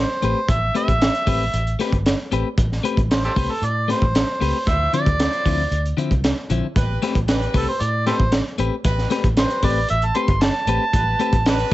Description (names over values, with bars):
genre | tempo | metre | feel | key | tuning
straight-eighth soul blues | 115 BPM | 4/4 | straight | A minor | A4 = 443 Hz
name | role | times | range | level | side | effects
overdriven harmonica | melody | 0.0-11.7 s | G4 to C6 | -22 LUFS | right 2 dB | none
vintage muted fingered electric bass | bass | 0.0-11.7 s | G1 to A2 | -22 LUFS | equal | none
clean electric guitar | stabs | 0.2-11.7 s | D3 to B4 | -24 LUFS | left 5 dB | none
crunchy breakbeat drum kit | drums | 0.2-11.7 s | hi-hat, kick drum, snare drum | -21 LUFS | equal | none
bright horn section | sustained chords | 4.7-11.7 s | C4 to C5 | -30 LUFS | equal | none
room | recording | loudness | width
light reverb | nothing above 7.9 kHz | -17 LUFS | side -16 dB against mid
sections
0.0-11.7 A section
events
harmonica solo 0.0-11.7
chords
0.0 Am9; 4.7 Dm9; 6.8 Am9